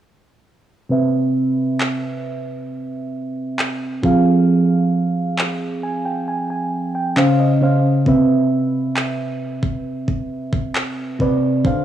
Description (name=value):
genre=contemporary R&B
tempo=67 BPM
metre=4/4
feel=straight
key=C major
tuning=A4 = 440 Hz
part: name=mellow FM electric piano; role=accompaniment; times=0.9-11.8 s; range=C3 to Ab5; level=-17 LUFS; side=right 1 dB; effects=chorus, low-pass filter, cassette tape
part: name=smooth R&B drum kit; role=drums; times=1.8-11.8 s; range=handclaps, kick drum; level=-22 LUFS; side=equal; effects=cassette tape
room=light reverb, digital ambience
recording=home recording on cassette, studio ambience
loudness=-16 LUFS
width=side -11 dB against mid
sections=0.9-11.8 A section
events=filter sweep on FM electric piano 0.9-11.8; FM electric piano fill 5.4-8.1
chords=0.9 Cmaj7; 4.0 Fm; 7.2 Dbmaj7; 8.1 Cmaj7